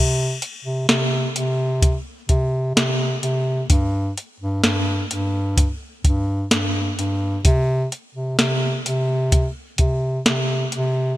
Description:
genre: dream pop.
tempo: 64 BPM.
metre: 4/4.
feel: straight.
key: unclear.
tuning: A4 = 440 Hz.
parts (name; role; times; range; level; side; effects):
mellow bass clarinet; bass; 0.0-11.1 s; G2 to C3; -21 LUFS; equal; none.
soft vintage rhythm box; drums; 0.4-10.9 s; hi-hat, kick drum, snare drum; -20 LUFS; equal; gated reverb.
room: light reverb.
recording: bright 1980s-style digital production.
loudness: -18 LUFS.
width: side -15 dB against mid.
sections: 0.0-11.2 A section.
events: none.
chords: none.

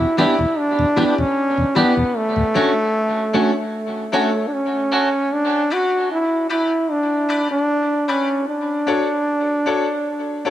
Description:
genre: reggae.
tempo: 76 BPM.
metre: 4/4.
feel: straight.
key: D major.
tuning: A4 = 440 Hz.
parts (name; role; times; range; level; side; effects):
bright trombone; melody; 0.0-10.5 s; A3 to F#4; -18 LUFS; equal; tape echo.
mellow tonewheel organ; accompaniment; 0.0-2.4 s; D2 to D4; -23 LUFS; left 1 dB; slow rotary speaker, high-pass filter.
clean electric guitar; accompaniment; 0.2-5.1 s; A3 to G4; -22 LUFS; right 2 dB; lush chorus, high-pass filter, tape echo.
bright upright piano; stabs; 0.2-10.5 s; D4 to D5; -25 LUFS; left 4 dB; high-pass filter, tape echo.
room: light reverb.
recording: none.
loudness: -17 LUFS.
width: side -12 dB against mid.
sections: 0.0-10.5 A section.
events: break 2.2-10.5; filter sweep 2.2-8.5.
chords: 0.0 Em7; 2.2 Dmaj7; 5.3 Em7; 8.5 Dmaj7.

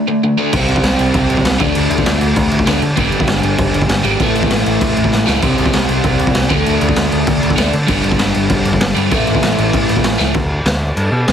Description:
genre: punk rock.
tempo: 196 BPM.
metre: 4/4.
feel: straight.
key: unclear.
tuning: A4 = 438 Hz.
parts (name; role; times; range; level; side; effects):
overdriven electric guitar; riff; 0.0-10.4 s; G2 to D4; -15 LUFS; equal; none.
growling picked electric bass; bass; 0.5-11.3 s; G1 to D3; -19 LUFS; equal; overdrive.
raw garage drum kit; drums; 0.5-11.3 s; crash cymbal, kick drum, snare drum, splash cymbal; -16 LUFS; equal; none.
room: light reverb.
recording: heavily compressed radio sound, multiband compression.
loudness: -12 LUFS.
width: side -8 dB against mid.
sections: 0.5-10.3 A section.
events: break 0.0-0.5; drum fill 5.1-5.4, 10.2.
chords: 0.0 D5; 0.5 C5; 1.6 D5; 3.0 G5; 4.2 A5; 5.4 C5; 6.5 D5; 7.9 G5; 9.1 A5; 10.3 Dsus4.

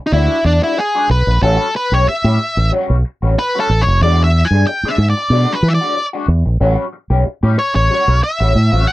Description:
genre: funk.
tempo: 93 BPM.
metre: 4/4.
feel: straight.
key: unclear.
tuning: A4 = 440 Hz.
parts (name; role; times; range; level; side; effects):
octave-fuzz lead guitar; melody; 0.1-8.9 s; D4 to G#5; -16 LUFS; equal; distortion.
electric guitar at the edge of break-up; accompaniment; 0.1-8.9 s; G3 to G#4; -20 LUFS; left 2 dB; wah.
fingered electric bass with an envelope filter; bass; 0.1-8.9 s; F1 to E3; -13 LUFS; equal; none.
room: little or no reverb.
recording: dry, close 1970s-style studio recording.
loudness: -12 LUFS.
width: side -17 dB against mid.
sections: 0.0-8.9 A section.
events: lead electric guitar solo 0.0-8.9.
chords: 0.0 E9; 1.4 A13; 4.0 E9; 6.6 A13.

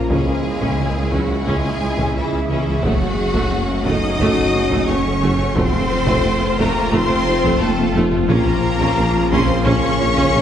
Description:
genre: cinematic, hybrid orchestral and electronic film score.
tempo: 88 BPM.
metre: 4/4.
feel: straight.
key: unclear.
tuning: A4 = 437 Hz.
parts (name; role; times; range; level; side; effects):
rich symphonic violin section; melody; 0.0-10.4 s; Fb5 to Eb6; -25 LUFS; left 2 dB; none.
bright symphonic violin section; second line; 0.0-10.4 s; Fb4 to Eb5; -25 LUFS; left 1 dB; none.
rich symphonic viola section; accompaniment; 0.0-10.4 s; A3 to F4; -24 LUFS; right 1 dB; none.
dark French horn section; sustained chords; 0.0-10.4 s; Db3 to Gb4; -25 LUFS; left 3 dB; none.
granular cloud pad; sustained chords; 0.0-10.4 s; Db3 to Gb5; -28 LUFS; equal; none.
warm trombone section; sustained chords; 0.0-10.4 s; Db3 to Bb3; -28 LUFS; right 1 dB; none.
harp-like synth pluck; arpeggios; 0.0-10.4 s; Db3 to Bb4; -26 LUFS; left 1 dB; chorus, phaser.
phased detuned saw bass; bass; 0.0-10.4 s; F1 to Db2; -26 LUFS; equal; phaser.
rich symphonic cello section; bass; 0.0-10.4 s; Fb3 to Eb4; -26 LUFS; right 2 dB; none.
dark tuba; bass; 0.1-10.4 s; F1 to Db2; -26 LUFS; right 1 dB; none.
rich symphonic double bass section; bass; 0.1-10.4 s; F1 to Db2; -25 LUFS; right 1 dB; none.
taiko ensemble; drums; 0.1-10.4 s; none; -25 LUFS; equal; none.
room: wet scoring stage reverb, RT60 1.9 s.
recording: heard from further back in the room, nothing above 10.9 kHz.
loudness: -15 LUFS.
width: side -9 dB against mid.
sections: 0.0-10.4 A section.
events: drum fill 7.6-8.3.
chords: 0.1 Dbm; 2.8 Gbm; 5.6 F; 8.3 Bbm.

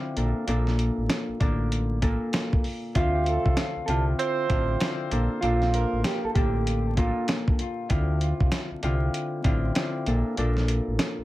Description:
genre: hip hop, boom-bap hip-hop.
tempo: 97 BPM.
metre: 4/4.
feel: swing 62% on 16ths.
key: unclear.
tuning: A4 = 442 Hz.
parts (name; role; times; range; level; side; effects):
Celtic harp; accompaniment; 0.0-11.2 s; Bb2 to E5; -29 LUFS; left 1 dB; cassette tape, high-pass filter, low-pass filter.
growling FM bass; bass; 0.2-11.2 s; A1 to D2; -26 LUFS; equal; none.
dusty soul sampler-style drum kit; drums; 0.2-11.2 s; hi-hat, kick drum, snare drum; -26 LUFS; equal; none.
mellow electric guitar; melody; 3.0-7.3 s; F4 to A4; -30 LUFS; right 1 dB; high-pass filter, low-pass filter, ping-pong delay.
mellow horn section; stabs; 3.1-6.3 s; G3 to C5; -31 LUFS; right 5 dB; high-pass filter, low-pass filter, ping-pong delay.
room: light reverb.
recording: vinyl crackle.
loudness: -23 LUFS.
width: side -16 dB against mid.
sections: 0.0-11.2 A section.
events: none.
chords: 0.2 Bbmaj7; 3.0 Dm9; 5.1 Bbmaj7; 7.9 Dm9; 10.1 Bbmaj7.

